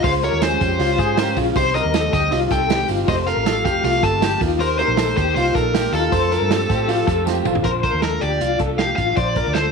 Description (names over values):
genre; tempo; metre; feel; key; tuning
jangly indie pop; 158 BPM; 4/4; straight; F mixolydian; A4 = 440 Hz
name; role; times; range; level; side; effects
dark smooth lead guitar; melody; 0.0-9.7 s; A4 to A5; -22 LUFS; left 1 dB; overdrive, slapback echo
dark upright piano; accompaniment; 0.0-7.7 s; A3 to C5; -25 LUFS; right 15 dB; none
raw garage guitar; accompaniment; 0.0-9.7 s; Bb2 to G4; -28 LUFS; right 15 dB; overdrive
electric guitar through a small old amp; arpeggios; 0.0-9.7 s; F4 to C5; -22 LUFS; left 13 dB; tremolo, slapback echo
vintage muted fingered electric bass; bass; 0.0-9.7 s; F1 to A2; -24 LUFS; equal; none
vintage drum kit; drums; 0.0-9.6 s; hi-hat, kick drum, snare drum, toms; -24 LUFS; right 5 dB; none
tambourine; percussion; 0.0-7.5 s; none; -41 LUFS; right 16 dB; none
room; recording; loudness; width
light reverb, small room ambience; 1960s-style stereo with parts hard left and right; -16 LUFS; side -5 dB against mid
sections
0.0-7.6 A section; 7.6-9.7 B section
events
drum fill 7.3-7.6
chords
0.0 Db; 1.6 Cm; 3.1 Fadd9; 4.4 Eb; 6.1 F; 7.6 Bb